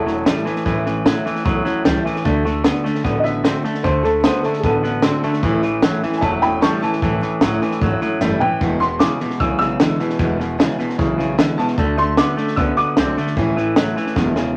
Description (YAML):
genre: rockabilly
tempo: 151 BPM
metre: 4/4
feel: straight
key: A major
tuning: A4 = 441 Hz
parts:
  - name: dark upright piano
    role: melody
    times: 0.0-0.6, 3.2-13.3 s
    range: G#4 to E6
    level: -24 LUFS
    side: equal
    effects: none
  - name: picked steel-string acoustic guitar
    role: accompaniment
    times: 0.0-14.6 s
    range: E2 to F#4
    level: -26 LUFS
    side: equal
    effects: none
  - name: twangy electric guitar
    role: riff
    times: 0.0-14.5 s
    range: E2 to C4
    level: -24 LUFS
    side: equal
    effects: none
  - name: upright bass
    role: bass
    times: 0.0-14.6 s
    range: E1 to D2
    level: -28 LUFS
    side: equal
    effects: none
  - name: compact cocktail drum kit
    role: drums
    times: 0.1-14.5 s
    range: hi-hat, kick drum, snare drum, toms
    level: -23 LUFS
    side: equal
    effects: none
room: moderate club reverb, RT60 0.5 s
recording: vinyl crackle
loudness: -18 LUFS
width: mono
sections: 0.0-14.6 A section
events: drum fill 8.2-8.6, 14.2-14.6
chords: 0.0 A; 2.2 D; 5.4 A; 8.6 E; 11.8 D; 13.4 A